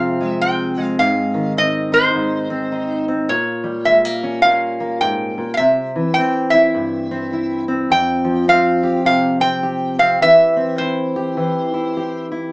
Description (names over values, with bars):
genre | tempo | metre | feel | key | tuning
acoustic folk duo or small band | 104 BPM | 4/4 | swing 61% on 8ths | unclear | A4 = 441 Hz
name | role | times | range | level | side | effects
metal-body resonator slide guitar | melody | 0.0-12.3 s | C5 to G5 | -15 LUFS | equal | none
fingerpicked steel-string acoustic guitar | accompaniment | 0.0-12.5 s | F2 to G4 | -19 LUFS | equal | none
room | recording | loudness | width
moderate studio ambience, RT60 0.5 s | small speaker sound | -14 LUFS | side -26 dB against mid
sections
0.0-12.5 A section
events
none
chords
0.0 Fmadd9; 1.0 Ab6; 3.3 Gdim/Bb; 5.6 C; 7.9 Fsus2; 10.2 C/E